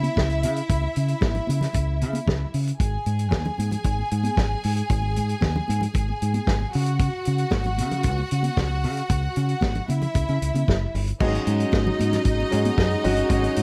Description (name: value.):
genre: disco.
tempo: 114 BPM.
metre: 4/4.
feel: straight.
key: C# minor.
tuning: A4 = 440 Hz.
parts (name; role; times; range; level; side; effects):
clear symphonic string section; second line; 0.0-13.6 s; D#4 to G#5; -31 LUFS; equal; none.
fingered electric bass; bass; 0.0-13.6 s; F#1 to C#3; -26 LUFS; equal; none.
warm soul drum kit; drums; 0.0-13.6 s; crash cymbal, hi-hat, kick drum, snare drum; -28 LUFS; equal; none.
congas; percussion; 0.0-13.6 s; none; -34 LUFS; equal; none.
clear concert grand piano; accompaniment; 11.2-13.6 s; F#3 to G#4; -28 LUFS; equal; none.
dark French horn section; sustained chords; 11.2-13.6 s; G#3 to F#4; -31 LUFS; equal; none.
room: little or no reverb.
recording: none.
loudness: -23 LUFS.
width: mono.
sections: 0.0-11.2 A section; 11.2-13.6 B section.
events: none.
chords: 0.0 C#m; 2.8 G#5; 6.7 C#m; 11.2 G#7sus4.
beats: 0.17 | 0.70 1.22 1.75 2.27 | 2.80 3.32 3.85 4.38 | 4.90 5.43 5.95 6.48 | 7.00 7.53 8.05 8.58 | 9.10 9.63 10.15 10.68 | 11.21 11.73 12.26 12.78 | 13.30.